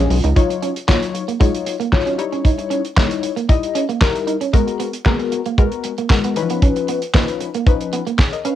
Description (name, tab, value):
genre	early-eighties boogie funk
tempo	115 BPM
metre	4/4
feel	straight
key	Eb minor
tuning	A4 = 440 Hz
part	funky polysynth comp	accompaniment	0.0-8.6 s	Fb3 to F5	-21 LUFS	left 8 dB	chorus, cassette tape
part	clean electric guitar	riff	0.0-8.6 s	Ab3 to Eb4	-24 LUFS	right 9 dB	wide subtle chorus, cassette tape
part	damped 70s drum kit	drums	0.1-8.6 s	handclaps, hi-hat, kick drum, snare drum	-16 LUFS	equal	cassette tape
room	light reverb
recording	home recording on cassette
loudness	-15 LUFS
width	side -12 dB against mid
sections	0.4-8.6 A section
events	none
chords	0.4 Ebm9; 2.2 Eb7b9; 4.5 Abm9; 6.4 Db9